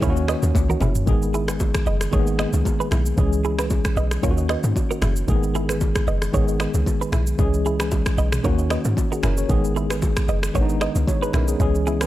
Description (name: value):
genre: afrobeats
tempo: 114 BPM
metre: 4/4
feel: swing 55% on 16ths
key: G# minor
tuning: A4 = 439 Hz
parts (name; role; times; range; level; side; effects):
- tine electric piano; accompaniment; 0.0-12.1 s; D#3 to C#5; -25 LUFS; left 1 dB; medium stereo tremolo
- clean electric guitar; riff; 0.0-12.1 s; E4 to D#5; -29 LUFS; right 6 dB; phaser, digital delay
- deep log drum bass; bass; 0.0-12.1 s; F#1 to G#2; -22 LUFS; equal; none
- afro-pop drum kit; drums; 0.0-12.1 s; finger snaps, kick drum, rim click, shaker, toms; -24 LUFS; equal; none
- congas and bongos; percussion; 0.0-12.1 s; none; -31 LUFS; left 1 dB; none
room: little or no reverb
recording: none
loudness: -18 LUFS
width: side -14 dB against mid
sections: 0.0-1.1 A section; 1.1-12.1 B section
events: drum fill 0.5-1.1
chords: 0.0 D#m7; 3.2 C#m; 4.2 D#m7; 5.3 G#m; 7.4 C#m; 8.4 D#m7; 9.5 G#m